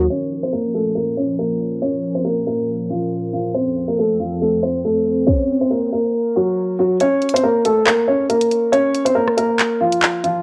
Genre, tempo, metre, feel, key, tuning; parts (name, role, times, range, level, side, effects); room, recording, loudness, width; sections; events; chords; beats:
hip hop, drill; 139 BPM; 4/4; half-time; Bb harmonic minor; A4 = 438 Hz
dark baby grand piano; melody; 0.0-10.4 s; F3 to Db5; -19 LUFS; equal; low-pass filter, cassette tape
hollow soft pad; sustained chords; 0.0-5.3 s; F2 to Bb4; -28 LUFS; equal; chorus, cassette tape
drill drum kit; drums; 0.1-10.3 s; handclaps, hi-hat, kick drum, rim click, snare drum; -21 LUFS; equal; cassette tape
swell; sound effects; 4.9-6.1 s; -26 LUFS; equal
light reverb, digital ambience; home recording on cassette, low-pass filter; -18 LUFS; mono
0.1-7.0 A section; 7.0-10.4 B section
filter sweep 0.1-7.0; swell 4.9-7.0; kick muted 7.0-10.4
0.1 Bbm; 3.5 F; 5.3 Gb; 7.0 Bbm
| 0.10 0.53 0.96 1.39 | 1.82 2.25 2.69 3.12 | 3.55 3.98 4.41 4.84 | 5.28 5.71 6.14 6.57 | 7.00 7.43 7.87 8.30 | 8.73 9.16 9.59 10.02